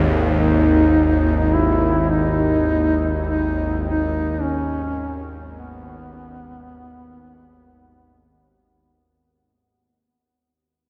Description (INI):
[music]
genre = dark ambient drone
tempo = 52 BPM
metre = 4/4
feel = straight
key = G# minor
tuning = A4 = 441 Hz
[part]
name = bowed-like drone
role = drone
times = 0.0-9.1 s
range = G#1 to D#2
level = -22 LUFS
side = equal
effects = built-in reverb
[part]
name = mellow duduk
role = melody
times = 0.4-8.4 s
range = B3 to E4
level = -23 LUFS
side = equal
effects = tape echo
[sound]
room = wet huge ambient reverb, RT60 8.7 s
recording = none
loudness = -19 LUFS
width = mono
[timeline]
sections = 0.0-9.0 A section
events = fade-out 0.0-9.0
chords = 0.0 G#5